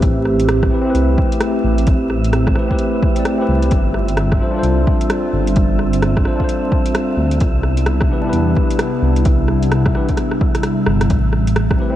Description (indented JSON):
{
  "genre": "future garage",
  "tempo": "130 BPM",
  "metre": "4/4",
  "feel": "swing 62% on 16ths",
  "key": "A minor",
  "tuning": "A4 = 440 Hz",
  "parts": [
    { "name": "bright tine electric piano", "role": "accompaniment", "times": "0.0-12.0 s", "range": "C4 to D5", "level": "-22 LUFS", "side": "left 1 dB", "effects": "sidechain pumping, diffuse ambient delay" },
    { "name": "warbly tape-like pad", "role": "sustained chords", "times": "0.0-12.0 s", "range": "C3 to G4", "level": "-20 LUFS", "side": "right 1 dB", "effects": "chorus, built-in reverb, vintage 12-bit sampler grit, sidechain pumping" },
    { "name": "dark detuned saw bass", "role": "bass", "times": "0.0-11.8 s", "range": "G1 to E2", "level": "-17 LUFS", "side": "equal", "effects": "sidechain pumping" },
    { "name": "deep house drum kit", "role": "drums", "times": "0.0-11.8 s", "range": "hi-hat, rim click", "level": "-25 LUFS", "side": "equal", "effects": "overdrive, vintage 12-bit sampler grit" },
    { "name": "electronic kick drum", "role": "drums", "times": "0.0-11.8 s", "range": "none", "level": "-18 LUFS", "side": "equal", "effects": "overdrive, vintage 12-bit sampler grit" },
    { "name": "wind-like tuned noise texture", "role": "texture", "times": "0.0-12.0 s", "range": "E5", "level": "-30 LUFS", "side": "right 2 dB", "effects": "built-in reverb" }
  ],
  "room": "moderate huge ambient reverb, RT60 4.2 s",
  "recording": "dreamy mix soaked in reverb, vinyl crackle",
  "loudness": "-14 LUFS",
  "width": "side -12 dB against mid",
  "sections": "0.0-12.0 A section",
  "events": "drum fill 10.2-11.1",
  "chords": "0.0 Am7; 3.7 G7sus4; 7.4 Cmaj7; 11.1 Am7",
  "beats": "| 0.03 0.49 0.95 1.41 | 1.87 2.33 2.80 3.26 | 3.72 4.18 4.64 5.10 | 5.57 6.03 6.49 6.95 | 7.41 7.87 8.34 8.80 | 9.26 9.72 10.18 10.64 | 11.10 11.56"
}